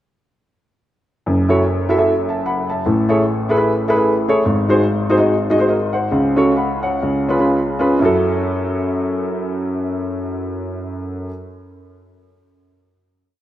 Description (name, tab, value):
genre	gospel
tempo	113-150 BPM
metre	4/4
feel	swing 59% on 8ths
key	F# minor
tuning	A4 = 440 Hz
part	warm baby grand piano	solo	1.3-11.3 s	F#1 to B5	-15 LUFS	equal	none
room	moderate lush hall reverb, RT60 2.8 s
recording	rough home demo mix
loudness	-15 LUFS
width	side -12 dB against mid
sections	1.3-8.0 breakdown; 8.0-12.3 final chord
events	slowing down 4.5-8.0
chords	1.3 F#m7; 2.9 Amaj7; 4.5 G#7; 6.1 F#m/C#; 7.0 C#7; 8.0 F#m7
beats	| 1.27 1.67 2.07 2.47 | 2.87 3.27 3.67 4.07 | 4.47 4.87 5.27 5.69 | 6.12 6.56 7.02 7.50 | 8.02 8.55 9.08 9.61 | 10.14 10.66 11.19